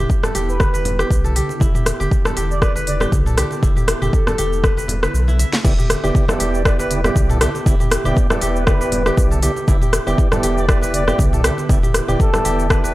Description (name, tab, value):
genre	afro house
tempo	119 BPM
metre	4/4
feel	swing 55% on 16ths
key	E minor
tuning	A4 = 440 Hz
part	ethereal airy pad	sustained chords	0.0-12.9 s	D3 to B4	-30 LUFS	equal	ensemble chorus, built-in reverb, sidechain pumping
part	kora	arpeggios	0.0-12.9 s	E4 to E5	-25 LUFS	right 1 dB	sidechain pumping, tape echo
part	warm sub bass	bass	0.0-12.9 s	E1 to B1	-21 LUFS	equal	sidechain pumping
part	afro-pop drum kit	drums	0.1-12.9 s	crash cymbal, hi-hat, rim click, shaker, snare drum, toms	-22 LUFS	equal	small room ambience
part	electronic kick drum	drums	0.1-12.8 s	none	-17 LUFS	equal	small room ambience
part	congas	percussion	0.1-12.9 s	none	-27 LUFS	right 1 dB	none
part	expressive synth lead	melody	0.5-12.9 s	A4 to D5	-26 LUFS	left 1 dB	lush chorus, tape echo
part	mellow tonewheel organ	stabs	5.6-12.9 s	B3 to D5	-23 LUFS	right 2 dB	overdrive, fast rotary speaker, sidechain pumping, tape echo
room	little or no reverb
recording	dry, gritty hardware recording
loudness	-14 LUFS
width	side -17 dB against mid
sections	0.0-5.6 A section; 5.6-12.9 B section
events	kick drops out 5.1-5.6; drum fill 5.4; drop 5.6-12.9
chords	0.0 Em7